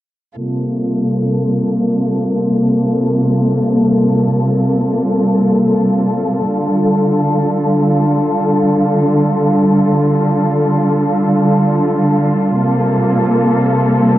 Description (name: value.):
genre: trip hop.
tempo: free time.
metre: none.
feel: none.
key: G minor.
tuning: A4 = 440 Hz.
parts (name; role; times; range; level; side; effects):
dark studio string section; sustained chords; 0.4-14.2 s; C3 to A4; -12 LUFS; equal; none.
room: moderate spring reverb, RT60 1.6 s.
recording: dark, warm production, low-pass filter.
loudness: -12 LUFS.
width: side -14 dB against mid.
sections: 0.4-14.2 A section.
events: filter sweep 0.4-14.2.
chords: 0.4 Gm11; 6.5 F69; 12.5 Gm11.